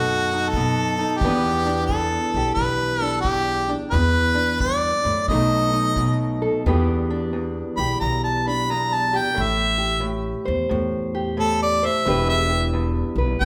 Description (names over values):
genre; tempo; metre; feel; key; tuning
acoustic country blues, solo or duo; 88 BPM; 4/4; swing 65% on 8ths; E minor; A4 = 440 Hz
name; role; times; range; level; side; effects
clear harmonica; melody; 0.0-13.4 s; F#4 to B5; -24 LUFS; equal; none
fingerpicked steel-string acoustic guitar; accompaniment; 0.0-13.4 s; E2 to C5; -27 LUFS; equal; none
upright bass; bass; 0.0-13.4 s; E1 to F#2; -28 LUFS; equal; none
kick drum; drums; 0.5-6.2 s; none; -31 LUFS; equal; none
room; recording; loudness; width
moderate recital hall reverb, RT60 1.3 s; recorded in a church or concert hall; -21 LUFS; mono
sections
0.0-6.7 A section; 6.7-13.4 B section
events
harmonica solo 6.7-13.4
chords
0.0 B7; 1.2 Em7; 5.3 B7; 6.7 Em7; 9.4 Am7; 12.1 Em7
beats
0.54 | 1.22 1.90 2.58 3.26 | 3.94 4.62 5.29 5.97 | 6.65 7.33 8.01 8.68 | 9.36 10.04 10.71 11.39 | 12.06 12.74 13.41